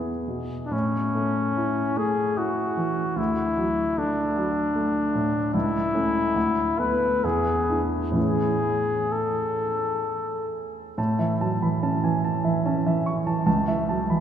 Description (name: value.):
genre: classical, romantic duo for trumpet and grand piano.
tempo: 62-78 BPM.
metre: 3/4.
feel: rubato.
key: A major.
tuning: A4 = 441 Hz.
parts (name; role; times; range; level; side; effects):
warm grand piano; accompaniment; 0.0-14.2 s; C#2 to C#6; -24 LUFS; right 1 dB; none.
mellow trumpet; melody; 0.7-10.5 s; C#4 to B4; -25 LUFS; left 2 dB; none.
room: wet cathedral reverb, RT60 5.1 s.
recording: recorded in a church or concert hall.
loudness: -22 LUFS.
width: side -9 dB against mid.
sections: 0.0-11.0 A section; 11.0-14.2 B section.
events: none.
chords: 0.0 E5; 0.7 A; 3.2 D; 5.5 A/C#; 6.4 Bm7/D; 7.2 E7; 8.2 A; 13.5 A/C#.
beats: | 0.73 1.57 2.38 | 3.18 3.99 4.76 | 5.54 6.36 7.23 | 8.16 9.12 10.05 | 10.98 11.83 12.65 | 13.47.